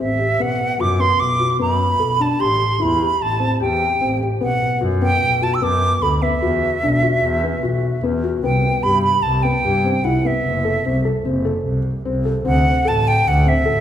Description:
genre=contemporary instrumental, chamber music in an uneven meter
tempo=149 BPM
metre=5/4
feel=straight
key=unclear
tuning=A4 = 439 Hz
part: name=bright silver concert flute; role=melody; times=0.0-13.8 s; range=E5 to E6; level=-19 LUFS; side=right 2 dB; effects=none
part: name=felt-muted upright piano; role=arpeggios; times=0.0-13.8 s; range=B3 to A4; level=-22 LUFS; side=left 3 dB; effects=none
part: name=warm double bass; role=bass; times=0.0-13.8 s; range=F#1 to G2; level=-20 LUFS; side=equal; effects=none
room=wet recital hall reverb, RT60 1.8 s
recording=recorded in a church or concert hall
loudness=-16 LUFS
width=side -10 dB against mid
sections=0.0-8.4 A section; 8.4-13.8 B section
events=none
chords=0.4 Bm; 2.4 Am7; 4.4 Bm; 6.4 Esus2; 8.4 Cmaj7(no3); 10.4 F#m7b5; 12.5 D7

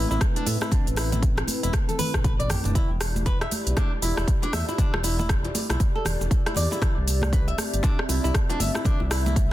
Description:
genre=afro house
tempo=118 BPM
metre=4/4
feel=swing 60% on 16ths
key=E minor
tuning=A4 = 440 Hz
part: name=dark analog pad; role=sustained chords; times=0.0-9.5 s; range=A3 to E5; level=-33 LUFS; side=left 1 dB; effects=chorus, sidechain pumping
part: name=flamenco guitar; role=arpeggios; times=0.0-9.4 s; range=D4 to E5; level=-31 LUFS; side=equal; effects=sidechain pumping, tape echo
part: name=smooth synth bass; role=bass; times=0.0-9.5 s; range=E1 to A2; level=-26 LUFS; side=equal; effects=sidechain pumping
part: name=house drum kit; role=drums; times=0.1-9.5 s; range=cabasa, hi-hat, rim click, toms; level=-29 LUFS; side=equal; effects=soft clipping on snare
part: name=congas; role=percussion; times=0.1-9.3 s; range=none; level=-34 LUFS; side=right 2 dB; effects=none
part: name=electronic kick drum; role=drums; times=0.2-9.5 s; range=none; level=-23 LUFS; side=equal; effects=none
part: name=bongos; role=percussion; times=3.8-9.1 s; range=none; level=-37 LUFS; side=left 4 dB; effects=none
room=digital ambience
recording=dense, heavily limited modern master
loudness=-21 LUFS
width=side -15 dB against mid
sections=0.0-9.5 A section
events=drum fill 1.7-2.8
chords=0.0 Am; 2.8 Em7; 6.8 C

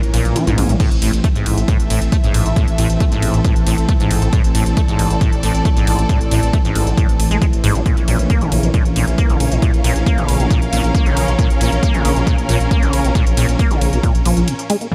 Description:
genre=driving peak-time techno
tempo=136 BPM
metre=4/4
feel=straight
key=unclear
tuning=A4 = 441 Hz
part: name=dark detuned saw bass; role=bass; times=0.0-14.4 s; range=A1 to Bb1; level=-21 LUFS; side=equal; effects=sidechain pumping
part: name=analog drone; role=drone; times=0.0-14.9 s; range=A2 to E3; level=-27 LUFS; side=equal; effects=chorus, sidechain pumping
part: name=techno drum kit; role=drums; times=0.0-14.9 s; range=crash cymbal, hi-hat, ride cymbal, toms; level=-29 LUFS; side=equal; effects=sidechain pumping on hats, sidechain pumping on cymbals, sidechain pumping on toms
part: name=rich studio string section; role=texture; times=0.0-14.9 s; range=C4 to F5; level=-26 LUFS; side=equal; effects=sidechain pumping
part: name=acid bass, saw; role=riff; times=0.1-14.9 s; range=G#2 to Bb3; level=-23 LUFS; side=equal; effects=ensemble chorus, sidechain pumping, digital delay
part: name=electronic kick drum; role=drums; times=0.8-14.1 s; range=none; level=-18 LUFS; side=equal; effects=none
part: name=impact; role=sound effects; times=14.9 s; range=none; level=-16 LUFS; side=equal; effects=none
room=little or no reverb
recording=none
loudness=-16 LUFS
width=mono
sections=0.0-14.9 A section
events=drop 0.0-14.9; kick drops out 0.4-0.8; drum fill 0.4-0.8; break 14.5-14.9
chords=0.0 Bbm; 0.8 Am; 7.9 Bbm

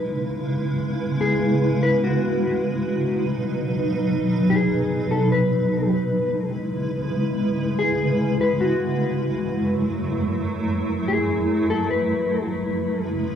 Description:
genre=hip hop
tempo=free time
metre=none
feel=none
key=C# minor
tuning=A4 = 439 Hz
part: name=granular cloud pad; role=sustained chords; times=0.0-13.4 s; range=F#2 to B4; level=-21 LUFS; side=right 1 dB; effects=built-in reverb, cassette tape
part: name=mellow electric guitar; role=melody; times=1.2-12.5 s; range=F#4 to B4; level=-26 LUFS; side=left 4 dB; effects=analog chorus, cassette tape, analog delay
room=wet studio ambience, RT60 0.5 s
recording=home recording on cassette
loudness=-20 LUFS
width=side -8 dB against mid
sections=0.0-12.5 A section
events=none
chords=0.0 C#m7; 2.7 B; 5.9 C#m7; 9.2 F#m7; 12.5 C#m7

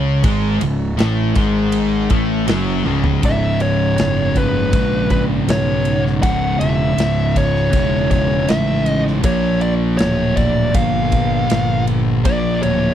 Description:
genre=stoner and doom metal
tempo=80 BPM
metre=4/4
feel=straight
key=unclear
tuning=A4 = 441 Hz
part: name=heavy high-gain guitar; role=riff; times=0.0-3.2 s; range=C#2 to C#4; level=-24 LUFS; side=left 1 dB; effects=distortion
part: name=thick fuzz guitar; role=riff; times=0.0-12.9 s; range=C#2 to C#4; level=-21 LUFS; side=left 8 dB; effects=distortion
part: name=thick fuzz guitar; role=riff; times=0.0-12.9 s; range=C#2 to C#4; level=-20 LUFS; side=right 8 dB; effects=distortion
part: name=fuzz fingered electric bass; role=bass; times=0.0-12.9 s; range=C#1 to C#2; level=-22 LUFS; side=equal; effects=overdrive
part: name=big rock drum kit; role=drums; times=0.2-12.8 s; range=kick drum, ride cymbal, snare drum, toms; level=-20 LUFS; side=equal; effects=none
part: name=fuzz lead guitar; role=melody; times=3.3-12.9 s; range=B4 to F#5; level=-20 LUFS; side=equal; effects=distortion, slapback echo
room=little or no reverb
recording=dry, close 1970s-style studio recording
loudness=-14 LUFS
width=side -10 dB against mid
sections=0.0-3.2 A section; 3.2-12.9 B section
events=drum fill 2.9-3.2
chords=0.0 C#5; 3.2 C#m; 9.2 A#

